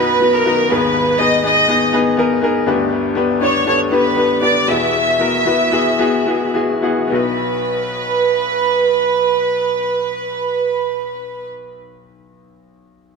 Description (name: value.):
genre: pop.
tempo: 104-122 BPM.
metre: 4/4.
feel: straight.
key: B major.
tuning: A4 = 436 Hz.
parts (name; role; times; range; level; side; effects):
warm studio violin section; melody; 0.0-11.5 s; A#4 to E5; -16 LUFS; right 3 dB; analog delay.
bright upright piano; accompaniment; 0.0-13.2 s; G1 to G#5; -17 LUFS; left 3 dB; analog delay.
room: moderate echo chamber reverb, RT60 2.0 s.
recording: echo-heavy mix.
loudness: -14 LUFS.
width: side -4 dB against mid.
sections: 0.0-7.1 A section; 7.1-11.7 B section.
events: slowing down 2.9-7.1; upright piano fill 6.3-7.1.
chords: 0.0 B; 0.7 G#m; 2.7 G; 4.7 Eadd9; 7.1 B.